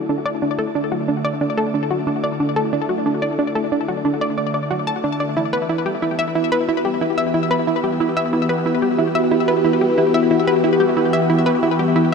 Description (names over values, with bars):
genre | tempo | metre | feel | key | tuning
ambient, sequencer-driven space music | 91 BPM | 4/4 | straight | unclear | A4 = 440 Hz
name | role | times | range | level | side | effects
phased analog pad | sustained chords | 0.0-12.1 s | D3 to G4 | -20 LUFS | equal | phaser, chorus
analog pluck | riff | 0.1-12.0 s | D4 to A5 | -19 LUFS | equal | chorus, ping-pong delay
room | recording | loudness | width
wet shimmer reverb, RT60 8.2 s | none | -16 LUFS | side -5 dB against mid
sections
0.0-12.1 A section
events
fade-in on analog synth pad 0.0-12.1; filter sweep on synth arpeggio sound 0.0-12.1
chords
0.0 D; 5.4 Em